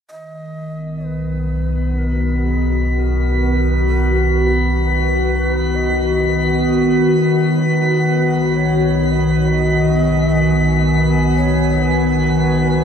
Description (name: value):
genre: ambient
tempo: 64 BPM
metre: 4/4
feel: straight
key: B major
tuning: A4 = 445 Hz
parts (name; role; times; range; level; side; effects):
- breathy bright long shakuhachi; melody; 0.1-12.8 s; G#4 to D#5; -28 LUFS; right 1 dB; ping-pong delay
- warbly tape-like pad; sustained chords; 0.4-12.8 s; D#3 to G#5; -16 LUFS; left 1 dB; chorus, built-in reverb
- deep rumbling drone; bass; 1.1-12.8 s; B1; -20 LUFS; equal; built-in reverb
- drifting glass-harmonics texture; texture; 1.8-12.8 s; B6; -24 LUFS; left 1 dB; chorus, built-in reverb
room: wet shimmer reverb, RT60 7.5 s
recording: none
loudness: -14 LUFS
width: side -7 dB against mid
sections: 0.1-12.8 A section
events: fade-in on shakuhachi 0.1-12.8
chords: 0.1 Bmaj7; 7.6 G#m7/B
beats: | 0.12 1.06 2.00 2.94 | 3.87 4.81 5.75 6.68 | 7.62 8.56 9.50 10.44 | 11.37 12.31